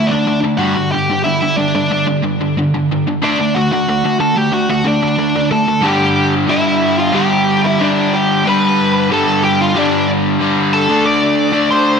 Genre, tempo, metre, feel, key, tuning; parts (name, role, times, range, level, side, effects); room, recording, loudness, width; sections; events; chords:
punk; 184 BPM; 4/4; straight; G mixolydian from 5.8 s; A4 = 440 Hz
high-gain lead guitar; melody; 0.0-12.0 s; D4 to D6; -16 LUFS; equal; distortion, slapback echo, ping-pong delay
overdriven electric guitar; riff; 0.0-12.0 s; G2 to D4; -14 LUFS; equal; slapback echo
wet lush hall reverb, RT60 1.6 s; big arena sound; -12 LUFS; side -6 dB against mid
0.0-5.8 A section; 5.8-12.0 B section
0.0 D5; 0.6 G5; 3.2 D; 5.8 G; 10.9 D5